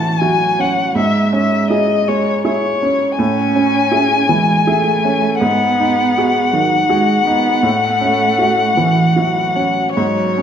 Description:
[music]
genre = neoclassical piano and strings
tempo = 81 BPM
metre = 3/4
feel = rubato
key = unclear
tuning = A4 = 440 Hz
[part]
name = muted violin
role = melody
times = 0.0-10.4 s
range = C#5 to A5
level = -16 LUFS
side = left 5 dB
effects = none
[part]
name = muted cello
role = second line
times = 0.0-10.4 s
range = E3 to C#4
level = -19 LUFS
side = right 4 dB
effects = none
[part]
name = clear upright piano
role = accompaniment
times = 0.0-10.4 s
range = G#2 to G#4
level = -18 LUFS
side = right 3 dB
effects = none
[sound]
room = wet recital hall reverb, RT60 1.4 s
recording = none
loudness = -12 LUFS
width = side -8 dB against mid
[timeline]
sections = 0.0-10.4 A section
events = none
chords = 0.0 F#m7/A; 1.0 C#m/G#; 3.2 Amaj7; 5.4 G#m7; 7.6 F#m7/A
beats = 0.22 | 0.96 1.71 2.44 | 3.18 3.92 4.66 | 5.40 6.14 6.88 | 7.63 8.39 9.16 | 9.96

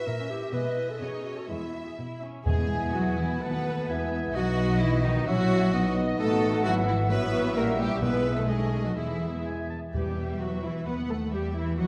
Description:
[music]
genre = quick classical-period movement for symphony orchestra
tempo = 129 BPM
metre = 2/4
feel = rubato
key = E major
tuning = A4 = 440 Hz
[part]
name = rich studio violin section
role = melody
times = 0.0-11.9 s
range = D#5 to F#5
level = -43 LUFS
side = equal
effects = none
[part]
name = dark clarinet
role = second line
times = 0.0-9.4 s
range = D#4 to B4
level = -37 LUFS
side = equal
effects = none
[part]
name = rich symphonic violin section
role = second line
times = 0.0-11.9 s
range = D#4 to E5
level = -37 LUFS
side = equal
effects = none
[part]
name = warm studio viola section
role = accompaniment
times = 0.0-11.9 s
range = G#3 to B4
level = -40 LUFS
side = equal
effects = none
[part]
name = warm studio cello section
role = bass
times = 0.1-11.9 s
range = E2 to B3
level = -33 LUFS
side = equal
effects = none
[part]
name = clear oboe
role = second line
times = 2.5-9.8 s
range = D#5 to A5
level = -40 LUFS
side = equal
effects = none
[part]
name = mellow flute section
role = second line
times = 2.5-9.7 s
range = C#5 to G#5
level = -38 LUFS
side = equal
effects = none
[part]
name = dark bassoon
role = accompaniment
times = 2.5-9.7 s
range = F#3 to C#4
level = -39 LUFS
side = equal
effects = none
[part]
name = mellow French horn section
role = sustained chords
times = 2.5-9.7 s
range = F#3 to F#4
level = -38 LUFS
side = equal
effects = none
[part]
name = warm studio double bass section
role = bass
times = 2.5-11.9 s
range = G#1 to E2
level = -33 LUFS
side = equal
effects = none
[part]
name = timpani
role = percussion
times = 2.5-3.1, 8.0-10.6 s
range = E2 to B2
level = -35 LUFS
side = equal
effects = none
[sound]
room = wet concert hall reverb, RT60 1.8 s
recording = dark, warm production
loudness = -27 LUFS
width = mono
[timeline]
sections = 0.0-2.5 A section; 2.5-9.9 B section; 9.9-11.9 B section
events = none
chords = 0.1 A#dim7; 0.5 E/B; 1.0 B9; 1.5 E; 3.4 B7/D#; 3.9 E; 4.3 B; 5.3 F#7/A#; 5.7 B; 6.2 B7/A; 6.6 E/G#; 7.1 F#m7/A; 7.6 A#dim7; 8.0 E/B; 8.5 B9; 9.0 E; 9.9 Em; 10.9 B7/D#; 11.3 Em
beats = 0.07 | 0.54 1.01 | 1.50 1.98 | 2.46 2.93 | 3.42 3.88 | 4.35 4.81 | 5.27 5.73 | 6.19 6.65 | 7.10 7.57 | 8.02 8.49 | 8.97 9.46 | 9.94 10.41 | 10.88 11.34 | 11.80

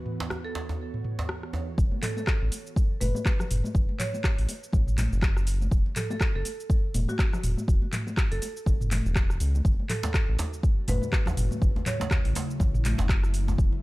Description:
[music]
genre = afro house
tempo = 122 BPM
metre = 4/4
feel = swing 58% on 16ths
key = F# minor pentatonic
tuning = A4 = 441 Hz
[part]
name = ethereal airy pad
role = sustained chords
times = 0.0-1.8, 10.5-13.8 s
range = C#3 to C#5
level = -38 LUFS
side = right 1 dB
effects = ensemble chorus, built-in reverb, sidechain pumping
[part]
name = afro-pop drum kit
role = drums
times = 0.1-13.7 s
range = cabasa, handclaps, hi-hat, rim click, toms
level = -32 LUFS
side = equal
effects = studio reverb
[part]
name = djembe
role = percussion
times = 0.2-1.6, 10.0-13.6 s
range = none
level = -34 LUFS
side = right 1 dB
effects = none
[part]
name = marimba with medium hard mallets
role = melody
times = 0.4-12.4 s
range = F#4 to C#5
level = -38 LUFS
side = right 2 dB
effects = tape echo
[part]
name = round analog bass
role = bass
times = 1.8-13.7 s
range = E1 to C#2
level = -27 LUFS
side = equal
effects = sidechain pumping
[part]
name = electronic kick drum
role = drums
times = 1.8-13.7 s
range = none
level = -24 LUFS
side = equal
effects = studio reverb
[part]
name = congas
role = percussion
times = 1.9-13.8 s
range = none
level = -36 LUFS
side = left 2 dB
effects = none
[sound]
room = digital ambience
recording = dry, gritty hardware recording, transformer saturation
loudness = -24 LUFS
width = side -20 dB against mid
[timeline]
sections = 0.0-1.8 A section; 1.8-13.8 B section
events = filter sweep on drum 0.0-1.8; drop 1.8-13.8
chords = 0.0 Esus2; 1.8 F#m; 5.7 Esus2; 9.7 F#m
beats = 0.31 0.80 1.29 | 1.78 2.27 2.77 3.26 | 3.75 4.24 4.73 5.23 | 5.72 6.21 6.70 7.19 | 7.68 8.18 8.67 9.16 | 9.65 10.14 10.64 11.13 | 11.62 12.11 12.60 13.10 | 13.59

